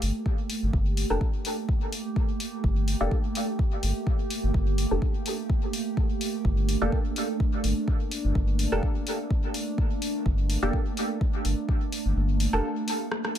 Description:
dub techno; 126 BPM; 4/4; swing 55% on 16ths; G minor; A4 = 441 Hz
warbly tape-like pad; sustained chords; 0.0-13.4 s; A3 to G4; -32 LUFS; right 2 dB; chorus, built-in reverb, phaser, sidechain pumping
round analog bass; bass; 0.0-12.6 s; F1 to G1; -26 LUFS; equal; sidechain pumping
deep house drum kit; drums; 0.0-13.4 s; hi-hat, rim click; -34 LUFS; left 2 dB; dub echo
electronic kick drum; drums; 0.3-11.8 s; -26 LUFS; equal
filtered dub chord stab; stabs; 1.1-12.7 s; Bb3 to A4; -32 LUFS; equal; chorus, phaser, sidechain pumping, dub echo
digital ambience; echo-heavy mix; -24 LUFS; side -10 dB against mid
0.0-13.4 A section
kick drops out 12.2-13.4; drum fill 13.1
0.0 Gmadd9

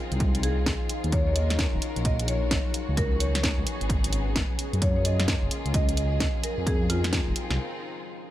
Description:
UK garage, two-step garage; 130 BPM; 4/4; swing 63% on 16ths; A4 = 442 Hz
warm symphonic violin section; sustained chords; 0.0-8.3 s; Bb3 to Bb4; -38 LUFS; left 2 dB; sidechain pumping
deep dark ambient pad; texture; 0.0-7.6 s; Gb3 to F5; -36 LUFS; left 3 dB; chorus, built-in reverb, sidechain pumping
dark detuned saw bass; bass; 0.1-7.6 s; Eb1 to Gb2; -26 LUFS; equal
garage drum kit; drums; 0.1-7.6 s; hi-hat, snare drum; -29 LUFS; equal; studio reverb
electronic kick drum; drums; 0.2-7.2 s; -28 LUFS; equal; overdrive, studio reverb
marimba with medium mallets; melody; 0.4-7.1 s; F4 to Eb5; -33 LUFS; equal; digital delay
little or no reverb; -23 LUFS; side -14 dB against mid
0.0-8.3 A section
break 7.6-8.3
0.0 Fm7; 1.1 Ebm9; 3.0 Db7sus4; 4.8 Gbmaj7; 6.7 Fm7

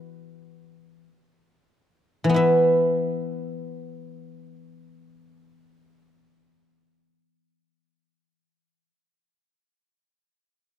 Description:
chinese traditional, Chinese solo plucked strings; free time; A4 = 442 Hz
guzheng; solo; 0.0-8.9 s; E3 to E5; -21 LUFS; equal
moderate concert hall reverb, RT60 2.3 s; dark, warm production; -19 LUFS; side -10 dB against mid
0.0-2.4 A section; 2.4-7.5 B section
slowing down 0.0-2.4

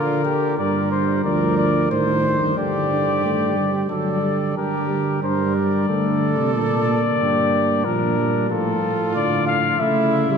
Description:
classical, imitative canzona for brass ensemble; 91 BPM; 3/4; straight; G minor; A4 = 440 Hz
warm cornet; melody; 0.0-10.4 s; A4 to F5; -22 LUFS; left 6 dB
mellow trumpet; second line; 0.0-10.4 s; D4 to C5; -25 LUFS; right 5 dB
dark euphonium; accompaniment; 0.0-10.4 s; D3 to Bb3; -24 LUFS; right 2 dB
mellow tuba; bass; 0.6-10.4 s; D2 to D3; -23 LUFS; right 2 dB
wet cathedral reverb, RT60 5.7 s; -18 LUFS; side -6 dB against mid
0.6-4.6 A section; 4.6-10.4 B section
0.0 Bb/D; 0.6 Gm; 1.9 Adim; 2.6 Dsus4/G; 3.9 D; 4.6 Gm/D; 5.9 D5; 6.5 Gm/Bb; 8.5 Dm/A; 9.8 A/C#

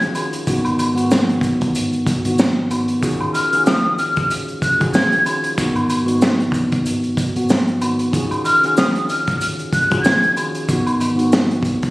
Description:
hip hop, boom-bap hip-hop; 94 BPM; 4/4; swing 56% on 16ths; A4 = 438 Hz
breathy jazz flute; melody; 0.0-10.3 s; Eb6 to Ab6; -18 LUFS; equal; high-pass filter, low-pass filter, tape echo
mellow tine electric piano; accompaniment; 0.0-11.9 s; Ab2 to Ab4; -19 LUFS; equal; high-pass filter, low-pass filter
crunchy breakbeat drum kit; drums; 0.0-11.9 s; hi-hat, kick drum, snare drum; -20 LUFS; equal
maracas and woodblock; percussion; 0.2-11.8 s; -29 LUFS; equal
light reverb, small room reverb; recorded on a phone in the room, studio reverb, vinyl crackle; -15 LUFS; side -20 dB against mid
0.0-11.9 A section
0.5 Abm7; 3.0 Ebm11; 5.6 Abm7; 8.1 Ebm11; 10.7 Abm7

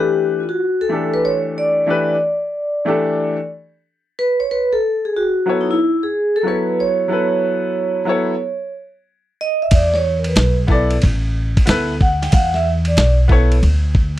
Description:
hip hop, jazz-hop; 92 BPM; 4/4; swing 65% on 16ths; A4 = 440 Hz
vibraphone with soft mallets; melody; 0.0-13.2 s; D#4 to G5; -18 LUFS; right 1 dB
clear baby grand piano; accompaniment; 0.0-13.6 s; E3 to D5; -20 LUFS; left 2 dB
upright bass; bass; 9.7-14.2 s; A1 to E2; -16 LUFS; equal
dusty soul sampler-style drum kit; drums; 9.7-14.1 s; hi-hat, kick drum, ride cymbal, snare drum; -17 LUFS; equal
little or no reverb; dry, close 1970s-style studio recording; -15 LUFS; side -14 dB against mid
0.0-14.2 A section
0.0 Em7; 4.5 F#m7; 9.7 E7sus4

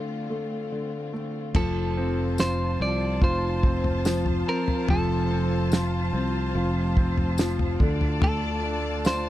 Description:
pop ballad; 72 BPM; 4/4; straight; F major; A4 = 440 Hz
warm concert grand piano; accompaniment; 0.0-9.3 s; D3 to F4; -29 LUFS; left 1 dB
rich studio string section; sustained chords; 0.0-9.3 s; D3 to A5; -34 LUFS; left 2 dB
sustaining fretless electric bass; bass; 1.5-9.3 s; F1 to D2; -27 LUFS; equal; lush chorus
damped 70s drum kit; drums; 1.5-9.2 s; crash cymbal, kick drum, snare drum, toms; -24 LUFS; equal
clean electric guitar; melody; 1.6-9.3 s; A4 to D5; -30 LUFS; right 1 dB
tambourine; percussion; 2.4-9.2 s; -40 LUFS; left 8 dB
little or no reverb; dry, close 1970s-style studio recording; -23 LUFS; side -14 dB against mid
0.0-1.5 A section; 1.5-9.3 B section
0.0 Dm7; 1.5 F; 7.8 Dm

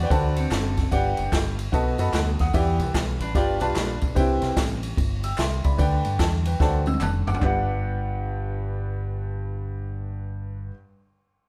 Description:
uptempo gospel; 148 BPM; 4/4; swing 64% on 8ths; G major; A4 = 442 Hz
clean electric guitar; second line; 0.0-4.1 s; C4 to D5; -36 LUFS; equal
clear grand piano; accompaniment; 0.0-10.7 s; G2 to F#6; -30 LUFS; equal
deep dub fingered electric bass; bass; 0.0-10.7 s; F1 to G2; -28 LUFS; equal
swinging big-band drum kit; drums; 0.1-7.5 s; kick drum, ride cymbal, snare drum, toms; -28 LUFS; equal
tambourine and handclaps; percussion; 0.1-7.7 s; -42 LUFS; equal
moderate stone room reverb, RT60 1.2 s; band playing live in one room; -24 LUFS; mono
0.9-7.4 A section; 7.4-10.7 B section
drum fill 6.6-7.4
0.1 D7; 0.9 Gmaj7; 1.7 B7; 2.5 Em7; 3.4 G7; 4.2 Cmaj7; 5.8 G/D; 6.6 D7; 7.4 Gmaj7

